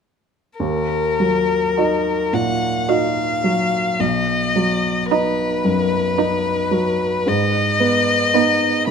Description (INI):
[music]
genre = classical, slow romantic movement for piano quintet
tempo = 50-57 BPM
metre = 3/4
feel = rubato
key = Eb minor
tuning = A4 = 435 Hz
[part]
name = rich violin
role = melody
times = 0.6-8.9 s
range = Bb4 to Gb5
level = -19 LUFS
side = left 4 dB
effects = none
[part]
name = clear baby grand piano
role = accompaniment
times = 0.6-8.9 s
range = B1 to Eb5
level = -20 LUFS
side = right 1 dB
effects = none
[part]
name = dark viola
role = accompaniment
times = 1.8-8.9 s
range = Cb4 to Gb4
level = -23 LUFS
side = right 13 dB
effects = none
[sound]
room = moderate scoring stage reverb, RT60 2.1 s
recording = close, detailed microphones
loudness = -16 LUFS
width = side -6 dB against mid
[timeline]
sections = 0.6-8.9 A section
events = none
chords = 0.6 Ebm; 4.0 B; 7.3 Abm